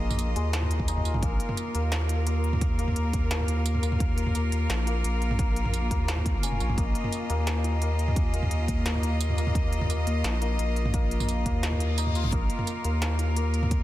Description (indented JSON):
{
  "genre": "half-time drum and bass",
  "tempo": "173 BPM",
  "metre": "4/4",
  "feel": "half-time",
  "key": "Bb minor",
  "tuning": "A4 = 440 Hz",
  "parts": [
    { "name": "bright studio cello section", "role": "sustained chords", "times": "0.0-13.8 s", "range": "Bb3 to Eb5", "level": "-33 LUFS", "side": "left 1 dB", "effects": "sidechain pumping" },
    { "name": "santur", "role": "arpeggios", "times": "0.0-13.8 s", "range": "Ab3 to F4", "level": "-35 LUFS", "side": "left 4 dB", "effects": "ping-pong delay" },
    { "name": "saturated sub bass", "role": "bass", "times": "0.0-13.8 s", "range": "F1 to Eb2", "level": "-26 LUFS", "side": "equal", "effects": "none" },
    { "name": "industrial drum kit", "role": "drums", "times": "0.1-13.8 s", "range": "hi-hat, snare drum, tambourine, toms", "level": "-33 LUFS", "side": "right 1 dB", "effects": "none" },
    { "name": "electronic kick drum", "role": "drums", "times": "0.8-13.8 s", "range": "none", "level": "-28 LUFS", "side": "equal", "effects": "none" },
    { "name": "reverse cymbal", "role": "sound effects", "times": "11.8-12.3 s", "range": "none", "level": "-41 LUFS", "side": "left 6 dB", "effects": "none" }
  ],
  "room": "little or no reverb",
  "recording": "dense, heavily limited modern master",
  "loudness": "-24 LUFS",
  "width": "side -14 dB against mid",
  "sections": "0.0-1.2 A section; 1.2-13.8 A section",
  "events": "drop 0.0-1.2, 1.2-13.8; kick drops out 0.9-1.2, 12.0-12.3; reverse cymbal 11.8-12.3",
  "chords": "0.0 Bb5"
}